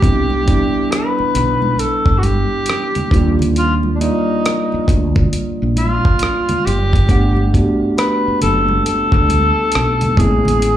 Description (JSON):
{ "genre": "R&B, neo-soul", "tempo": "68 BPM", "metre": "4/4", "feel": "swing 64% on 16ths", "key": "unclear", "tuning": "A4 = 440 Hz", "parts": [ { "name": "breathy tenor saxophone", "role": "melody", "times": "0.0-10.8 s", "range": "D4 to B4", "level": "-18 LUFS", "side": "left 1 dB", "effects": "plate reverb, slapback echo" }, { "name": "mellow tine electric piano", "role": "accompaniment", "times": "0.0-10.8 s", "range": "G3 to F#5", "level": "-19 LUFS", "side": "right 1 dB", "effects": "plate reverb" }, { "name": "woody fretless electric bass", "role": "bass", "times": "0.0-10.8 s", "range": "F#1 to Eb2", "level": "-17 LUFS", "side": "equal", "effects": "ensemble chorus" }, { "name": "dusty soul sampler-style drum kit", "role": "drums", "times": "0.0-10.8 s", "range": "hi-hat, kick drum, rim click", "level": "-16 LUFS", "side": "equal", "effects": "none" }, { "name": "congas", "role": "percussion", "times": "0.3-10.8 s", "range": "none", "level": "-26 LUFS", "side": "left 1 dB", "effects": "none" } ], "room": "light reverb", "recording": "live gig heard through the venue's PA, club reverb", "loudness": "-13 LUFS", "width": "side -11 dB against mid", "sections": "0.0-10.8 A section", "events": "none", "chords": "0.0 Cmaj9; 3.1 Ebmaj9; 7.1 Gmaj9; 10.2 Amaj9", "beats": "| 0.03 0.91 1.79 2.67 | 3.56 4.44 5.32 6.20 | 7.09 7.97 8.85 9.73 | 10.62" }